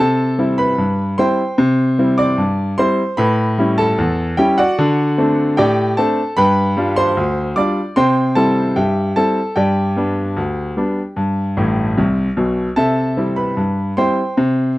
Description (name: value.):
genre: ragtime piano.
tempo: 75 BPM.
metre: 2/4.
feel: straight.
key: C major.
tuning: A4 = 440 Hz.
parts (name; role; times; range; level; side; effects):
bright grand piano; solo; 0.0-14.8 s; A1 to D6; -14 LUFS; equal; none.
room: little or no reverb.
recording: dry, close 1970s-style studio recording.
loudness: -14 LUFS.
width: side -18 dB against mid.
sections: 0.0-14.8 A section.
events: grand piano fill 11.6-12.8.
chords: 0.0 C; 3.2 A7; 4.8 D7; 6.4 G7; 8.0 C; 9.6 G; 12.8 C.